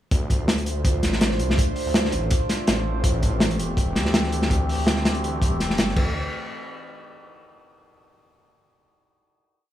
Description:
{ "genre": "drum and bass, jungle", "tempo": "164 BPM", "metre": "4/4", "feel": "swing 54% on 16ths", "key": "D minor", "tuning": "A4 = 440 Hz", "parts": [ { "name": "detuned saw bass", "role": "bass", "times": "0.1-6.1 s", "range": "E1 to D2", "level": "-25 LUFS", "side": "equal", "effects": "none" }, { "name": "crunchy breakbeat drum kit", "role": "drums", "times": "0.1-6.0 s", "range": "crash cymbal, hi-hat, kick drum, snare drum", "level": "-22 LUFS", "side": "equal", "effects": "none" } ], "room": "little or no reverb", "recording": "small room reverb", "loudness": "-20 LUFS", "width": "side -12 dB against mid", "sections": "0.1-6.0 drop; 6.0-7.4 final chord", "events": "drop 0.1-6.0", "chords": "none", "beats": "| 0.12 0.48 0.85 1.21 | 1.58 1.95 2.31 2.68 | 3.04 3.41 3.77 4.14 | 4.51 4.87 5.24 5.61 | 5.97" }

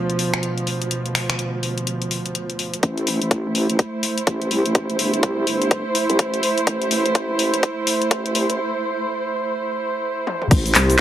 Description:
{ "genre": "bass house", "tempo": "125 BPM", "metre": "4/4", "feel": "swing 61% on 16ths", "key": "A minor", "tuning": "A4 = 441 Hz", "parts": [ { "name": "dark chamber string section", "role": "sustained chords", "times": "0.0-11.0 s", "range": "D2 to C5", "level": "-22 LUFS", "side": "right 2 dB", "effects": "sidechain pumping, low-pass filter" }, { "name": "house drum kit", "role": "drums", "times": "0.1-11.0 s", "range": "crash cymbal, finger snaps, handclaps, hi-hat, shaker, toms", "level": "-22 LUFS", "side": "left 2 dB", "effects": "none" }, { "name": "vowel-sweep wobble bass", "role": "bass", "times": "2.8-11.0 s", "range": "G1 to C2", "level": "-23 LUFS", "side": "left 1 dB", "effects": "chorus, tube saturation, sidechain pumping, high-pass filter" }, { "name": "electronic kick drum", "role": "drums", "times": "2.8-10.6 s", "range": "none", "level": "-16 LUFS", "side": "equal", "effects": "high-pass filter on kick" } ], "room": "light reverb", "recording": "high-pass filter", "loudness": "-19 LUFS", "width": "side -11 dB against mid", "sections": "0.0-2.8 A section; 2.8-10.5 B section", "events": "build-up 2.8-10.5; filter sweep 2.8-10.5; drum fill 6.7-8.6, 10.3; break 8.6-10.5", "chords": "0.0 Dm; 2.8 Am", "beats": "0.43 | 0.91 1.39 1.87 2.35 | 2.83 3.31 3.79 4.27 | 4.75 5.23 5.71 6.19 | 6.67 7.15 7.63 8.11 | 8.59 9.07 9.55 10.03 | 10.51 10.99" }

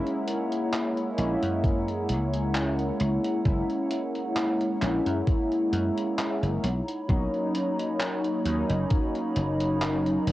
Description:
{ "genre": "vaporwave", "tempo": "66 BPM", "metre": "4/4", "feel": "swing 54% on 16ths", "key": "unclear", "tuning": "A4 = 441 Hz", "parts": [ { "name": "mellow synth brass", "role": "accompaniment", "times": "0.0-10.3 s", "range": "F#3 to E4", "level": "-28 LUFS", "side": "equal", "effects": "lush chorus, cassette tape, analog delay" }, { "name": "warbly tape-like pad", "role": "sustained chords", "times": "0.0-10.3 s", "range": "D#4 to B5", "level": "-30 LUFS", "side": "left 1 dB", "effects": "chorus, built-in reverb, cassette tape" }, { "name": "detuned 8-bit digital drum machine", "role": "drums", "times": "0.1-10.3 s", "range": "handclaps, hi-hat", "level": "-34 LUFS", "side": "equal", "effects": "cassette tape" }, { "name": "dry thumbed slap bass", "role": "bass", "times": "1.2-10.3 s", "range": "F#1 to F#2", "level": "-28 LUFS", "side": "equal", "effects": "none" }, { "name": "electronic kick drum", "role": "drums", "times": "1.6-9.1 s", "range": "none", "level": "-25 LUFS", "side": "equal", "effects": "cassette tape" } ], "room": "light reverb", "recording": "home recording on cassette", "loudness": "-24 LUFS", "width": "side -16 dB against mid", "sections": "0.0-10.3 A section", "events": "none", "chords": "0.0 F#7; 6.6 Bmaj9", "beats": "0.73 1.64 2.55 | 3.46 4.36 5.27 6.18 | 7.09 8.00 8.91 9.82" }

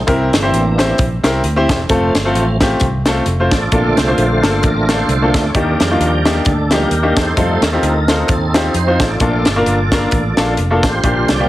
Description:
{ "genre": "uptempo gospel", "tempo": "131 BPM", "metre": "4/4", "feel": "swing 56% on 8ths", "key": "Bb major", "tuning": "A4 = 442 Hz", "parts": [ { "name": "tonewheel organ", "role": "sustained chords", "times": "0.0-11.5 s", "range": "D3 to D5", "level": "-19 LUFS", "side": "right 2 dB", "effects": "slow rotary speaker, overdrive, chorus vibrato" }, { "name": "fingered electric bass", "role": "bass", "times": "0.0-11.5 s", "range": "F1 to F2", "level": "-18 LUFS", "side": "equal", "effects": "none" }, { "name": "bright baby grand piano", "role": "accompaniment", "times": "0.1-11.5 s", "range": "Bb2 to C5", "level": "-16 LUFS", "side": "left 1 dB", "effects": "none" }, { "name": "tight funk drum kit", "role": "drums", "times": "0.1-11.4 s", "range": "hi-hat, kick drum, snare drum", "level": "-17 LUFS", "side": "equal", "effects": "none" }, { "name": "chorused pulse-width pad", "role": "sustained chords", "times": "11.0-11.5 s", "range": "D3 to Bb3", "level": "-24 LUFS", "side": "equal", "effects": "none" } ], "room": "moderate large studio reverb, RT60 1.3 s, studio reverb", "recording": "heavily compressed radio sound, multiband compression", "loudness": "-12 LUFS", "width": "side -15 dB against mid", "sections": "0.0-11.5 A section", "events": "tonewheel organ solo 0.0-11.5", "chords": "0.1 C7; 1.9 F; 3.7 Bbmaj7; 5.5 Ebmaj7; 7.4 F7; 9.2 Bbmaj7", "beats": "| 0.07 0.52 0.98 1.43 | 1.89 2.35 2.80 3.26 | 3.71 4.17 4.63 5.08 | 5.54 6.00 6.46 6.92 | 7.37 7.83 8.29 8.75 | 9.20 9.66 10.12 10.58 | 11.03" }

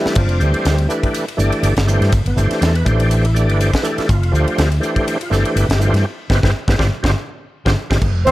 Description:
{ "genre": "electric jazz fusion", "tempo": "122 BPM", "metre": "4/4", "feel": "swing 55% on 16ths", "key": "G mixolydian", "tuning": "A4 = 440 Hz", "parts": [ { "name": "overdriven tonewheel organ", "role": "accompaniment", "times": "0.0-8.3 s", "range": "E3 to D5", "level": "-20 LUFS", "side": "equal", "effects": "slow rotary speaker, chorus vibrato" }, { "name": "mellow fretless electric bass", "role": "bass", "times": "0.1-8.3 s", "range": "F1 to G2", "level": "-15 LUFS", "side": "equal", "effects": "none" }, { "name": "crisp fusion drum kit", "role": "drums", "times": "0.1-8.3 s", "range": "crash cymbal, hi-hat, kick drum, ride cymbal, snare drum", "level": "-21 LUFS", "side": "equal", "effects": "none" }, { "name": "reedy silver concert flute", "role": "melody", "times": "8.2-8.3 s", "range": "C5", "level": "-11 LUFS", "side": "right 4 dB", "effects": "none" }, { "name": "warm tenor saxophone", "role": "second line", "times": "8.3 s", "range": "C4", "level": "-14 LUFS", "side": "left 3 dB", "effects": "none" } ], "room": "light reverb, studio ambience", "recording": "none", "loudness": "-14 LUFS", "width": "side -16 dB against mid", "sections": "0.0-8.0 A section", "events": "drum fill 0.0, 7.0-8.0; band accent 6.1-8.0", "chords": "0.2 G7sus4; 2.1 Cadd9/G; 4.1 G7sus4; 6.1 Cmaj7/G; 6.8 G7sus4", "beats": "| 0.17 0.66 1.15 1.64 | 2.13 2.62 3.11 3.60 | 4.09 4.58 5.07 5.56 | 6.05 6.54 7.04 7.53 | 8.02" }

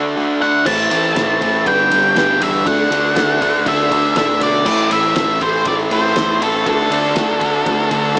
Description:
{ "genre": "classic rock", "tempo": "120 BPM", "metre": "4/4", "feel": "straight", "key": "unclear", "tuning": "A4 = 439 Hz", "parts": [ { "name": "tonewheel organ", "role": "sustained chords", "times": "0.0-8.2 s", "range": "A3 to B4", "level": "-27 LUFS", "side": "equal", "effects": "none" }, { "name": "overdriven semi-hollow guitar", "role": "riff", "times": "0.0-8.2 s", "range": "G2 to D4", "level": "-18 LUFS", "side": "equal", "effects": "none" }, { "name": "octave-fuzz lead guitar", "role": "melody", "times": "0.4-8.2 s", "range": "A4 to A5", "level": "-16 LUFS", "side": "equal", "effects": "distortion, slapback echo" }, { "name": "honky-tonk upright piano", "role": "accompaniment", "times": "0.7-8.2 s", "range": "A3 to C5", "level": "-26 LUFS", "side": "left 1 dB", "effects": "none" }, { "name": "growling picked electric bass", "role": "bass", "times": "0.7-8.2 s", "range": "G1 to A2", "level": "-27 LUFS", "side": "equal", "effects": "overdrive" }, { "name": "cloth-damped thuddy drum kit", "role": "drums", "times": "0.7-8.2 s", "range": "crash cymbal, kick drum, ride cymbal, snare drum", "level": "-21 LUFS", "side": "equal", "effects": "none" } ], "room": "light reverb, small room reverb", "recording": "small speaker sound", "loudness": "-13 LUFS", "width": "side -27 dB against mid", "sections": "0.0-8.2 A section", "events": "none", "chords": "0.0 D; 0.7 Am; 1.7 G; 2.7 D; 4.7 Am; 6.7 D", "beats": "0.16 | 0.66 1.16 1.66 2.16 | 2.66 3.16 3.67 4.17 | 4.66 5.16 5.66 6.16 | 6.66 7.16 7.66 8.16" }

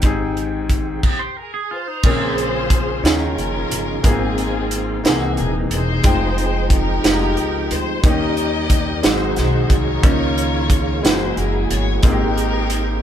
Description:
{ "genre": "slow gospel", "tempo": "60 BPM (dotted quarters)", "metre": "6/8", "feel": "straight", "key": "Ab major", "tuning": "A4 = 440 Hz", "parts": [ { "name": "bright grand piano", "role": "accompaniment", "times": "0.0-13.0 s", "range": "Ab2 to G5", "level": "-23 LUFS", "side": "left 2 dB", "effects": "none" }, { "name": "tonewheel organ", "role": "sustained chords", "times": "0.0-13.0 s", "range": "Db3 to G5", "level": "-25 LUFS", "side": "right 1 dB", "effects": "slow rotary speaker, chorus vibrato" }, { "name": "upright bass", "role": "bass", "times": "0.0-13.0 s", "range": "D#1 to Eb2", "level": "-23 LUFS", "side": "equal", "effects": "none" }, { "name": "crisp fusion drum kit", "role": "drums", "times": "0.0-12.9 s", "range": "crash cymbal, hi-hat, kick drum, snare drum", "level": "-17 LUFS", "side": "right 1 dB", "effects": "none" }, { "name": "warm studio string section", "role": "melody", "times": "1.1-13.0 s", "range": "Bb3 to Eb5", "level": "-24 LUFS", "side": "left 2 dB", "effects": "none" }, { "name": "twangy electric guitar", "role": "second line", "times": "1.2-2.2 s", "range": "Eb4 to C5", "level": "-26 LUFS", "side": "right 5 dB", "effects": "phaser" } ], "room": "moderate small room reverb, RT60 0.5 s", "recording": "band playing live in one room", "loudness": "-16 LUFS", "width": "side -10 dB against mid", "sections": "0.0-2.0 A section; 2.0-13.0 B section", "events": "stop 1.0-2.0", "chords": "0.0 Abmaj7; 2.0 Bbm9; 3.0 Eb9sus4; 4.0 Ab69; 5.0 C7alt; 6.0 Fm9; 8.0 Eb7; 9.0 Ab7; 10.0 Db69; 11.0 Gb9; 12.0 Abmaj9", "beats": "| 0.04 1.04 | 2.04 3.04 | 4.04 5.04 | 6.04 7.04 | 8.04 9.04 | 10.03 11.03 | 12.03" }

